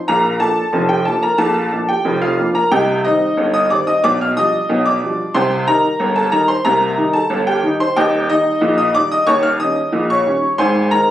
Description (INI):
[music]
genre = ragtime piano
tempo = 91 BPM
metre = 2/4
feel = straight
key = Eb major from 8.0 s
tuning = A4 = 440 Hz
[part]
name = clear upright piano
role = solo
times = 0.0-11.1 s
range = Eb1 to F6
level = -13 LUFS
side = equal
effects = none
[sound]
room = moderate club reverb, RT60 0.5 s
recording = recorded on a phone in the room, club reverb, compression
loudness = -13 LUFS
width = side -12 dB against mid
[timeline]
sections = 0.0-11.1 A section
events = none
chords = 0.1 Bb; 2.7 Cm; 4.0 G7/B; 5.3 Cm; 8.0 Eb; 9.3 Eb7; 10.6 Ab